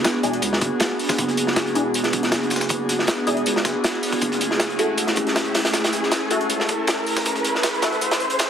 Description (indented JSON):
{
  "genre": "drum and bass, jungle",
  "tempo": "158 BPM",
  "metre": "4/4",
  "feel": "straight",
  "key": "F# minor",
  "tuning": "A4 = 436 Hz",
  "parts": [
    { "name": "airy breathy pad", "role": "sustained chords", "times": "0.0-8.5 s", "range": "A3 to G#4", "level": "-24 LUFS", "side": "right 1 dB", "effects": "chorus" },
    { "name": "saturated sub bass", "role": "bass", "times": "0.0-8.5 s", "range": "E1 to C#2", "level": "-33 LUFS", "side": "equal", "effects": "tube saturation, high-pass filter" },
    { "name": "breakbeat sampler-style drum kit", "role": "drums", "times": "0.0-8.5 s", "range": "hi-hat, snare drum, tambourine", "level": "-29 LUFS", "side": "left 2 dB", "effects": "high-pass filter on hats, high-pass filter on perc, high-pass filter on snare" },
    { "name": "crunchy breakbeat drum kit", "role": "drums", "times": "0.0-8.5 s", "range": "hi-hat, kick drum, snare drum", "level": "-23 LUFS", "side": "equal", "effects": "high-pass filter on kick, high-pass filter on hats, high-pass filter on snare, high-pass filter on room" },
    { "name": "riser", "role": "sound effects", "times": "1.4-8.5 s", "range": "none", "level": "-29 LUFS", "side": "right 1 dB", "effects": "none" },
    { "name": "filtered dub chord stab", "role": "stabs", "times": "0.2-7.9 s", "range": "D4 to A4", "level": "-27 LUFS", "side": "left 1 dB", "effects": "phaser, ensemble chorus, dub echo" }
  ],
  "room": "moderate echo chamber reverb, RT60 1.3 s, small room ambience",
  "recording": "heavily compressed radio sound, high-pass filter",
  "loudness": "-19 LUFS",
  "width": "side -8 dB against mid",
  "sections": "0.0-8.5 A section",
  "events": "build-up 0.0-8.5; riser 1.4-8.5",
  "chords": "0.0 E7; 4.2 F#m7",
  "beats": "0.04 0.42 0.80 | 1.18 1.56 1.94 2.32 | 2.70 3.08 3.46 3.84 | 4.22 4.60 4.98 5.36 | 5.74 6.12 6.50 6.88 | 7.26 7.64 8.02 8.40"
}